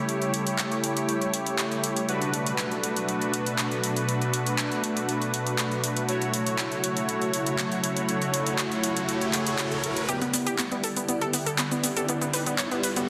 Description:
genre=progressive house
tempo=120 BPM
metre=4/4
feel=straight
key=E dorian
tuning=A4 = 441 Hz
part: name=evolving wavetable pad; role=sustained chords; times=0.0-13.1 s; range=B2 to A4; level=-33 LUFS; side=equal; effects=ensemble chorus, built-in reverb, phaser, vintage 12-bit sampler grit
part: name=soft supersaw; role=stabs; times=0.0-13.1 s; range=A3 to D5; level=-31 LUFS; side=equal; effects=low-pass filter, digital delay
part: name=big-room dance drum kit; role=drums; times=0.1-13.1 s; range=handclaps, hi-hat, shaker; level=-32 LUFS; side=equal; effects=overdrive, small room ambience
part: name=riser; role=sound effects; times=7.4-13.1 s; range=none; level=-39 LUFS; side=equal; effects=none
part: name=glassy wavetable pluck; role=arpeggios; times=10.1-13.1 s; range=B3 to C#5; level=-32 LUFS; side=equal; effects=chorus, digital delay
part: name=plucky analog bass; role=bass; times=10.1-13.1 s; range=none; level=barely audible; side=none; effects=none
room=moderate lush hall reverb, RT60 1.7 s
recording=dense, heavily limited modern master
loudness=-27 LUFS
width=mono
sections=0.0-10.1 A section; 10.1-13.1 B section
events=riser 7.4-10.1, 10.1-13.1; build-up 10.1-13.1; filter sweep on supersaw synth 10.1-13.1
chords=0.0 A7; 2.1 Bm7; 6.1 F#m7; 10.1 Em7

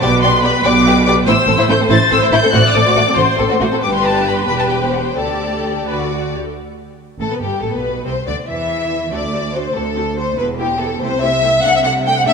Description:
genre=quick classical-period movement for string orchestra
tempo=94 BPM (dotted quarters)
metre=6/8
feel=rubato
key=G major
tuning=A4 = 440 Hz
part: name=rich symphonic violin section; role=melody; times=0.0-12.3 s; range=G4 to A6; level=-19 LUFS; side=left 4 dB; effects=none
part: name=warm symphonic violin section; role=second line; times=0.0-12.3 s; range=A3 to G5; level=-17 LUFS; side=left 3 dB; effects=none
part: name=rich symphonic viola section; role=accompaniment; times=0.0-12.3 s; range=G3 to D5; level=-22 LUFS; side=right 1 dB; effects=none
part: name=rich studio cello section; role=bass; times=0.0-12.3 s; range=D2 to E3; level=-21 LUFS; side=right 4 dB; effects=none
part: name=rich symphonic double bass section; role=bass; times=0.0-12.3 s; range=E1 to E2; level=-22 LUFS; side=right 4 dB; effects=none
room=wet concert hall reverb, RT60 2.3 s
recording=none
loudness=-13 LUFS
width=side -5 dB against mid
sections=0.0-6.6 A section; 6.6-12.3 B section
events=none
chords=0.0 G/B; 1.3 Am; 2.5 F#dim/A; 3.8 G; 4.5 Em; 5.2 Dsus4; 5.9 D; 6.6 G; 7.8 Bm; 8.5 N.C.; 9.1 D7; 10.4 Em; 11.0 Am7/C; 11.6 D5/C

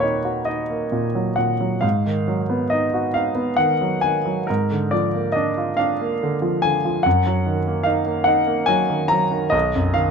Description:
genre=classical, romantic nocturne for solo piano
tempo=44-49 BPM (dotted quarters)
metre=12/8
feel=rubato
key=Eb minor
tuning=A4 = 439 Hz
part: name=clear grand piano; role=solo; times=0.0-10.1 s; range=B1 to Bb5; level=-18 LUFS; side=equal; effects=none
room=light reverb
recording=dark, warm production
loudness=-18 LUFS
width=side -6 dB against mid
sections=0.0-10.1 A section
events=none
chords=0.0 Ebm; 1.8 Abm7; 4.5 Bb7/Ab; 7.1 Ebm/Gb; 9.5 B

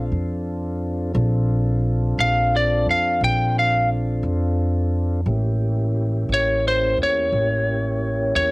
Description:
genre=slow blues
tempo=58 BPM (dotted quarters)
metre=12/8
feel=straight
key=unclear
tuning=A4 = 440 Hz
part: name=mellow tonewheel organ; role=sustained chords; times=0.0-8.5 s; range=Bb3 to A4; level=-27 LUFS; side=equal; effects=slow rotary speaker
part: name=upright bass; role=bass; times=0.0-8.5 s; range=A1 to F2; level=-22 LUFS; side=equal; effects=none
part: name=lightly driven lead guitar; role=melody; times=2.2-8.5 s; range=C5 to G5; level=-19 LUFS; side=equal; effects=cassette tape
room=moderate small room reverb, RT60 0.5 s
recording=home recording on cassette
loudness=-18 LUFS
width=side -25 dB against mid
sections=0.0-8.5 A section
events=none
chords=0.0 Bbmaj7; 5.3 A7b9

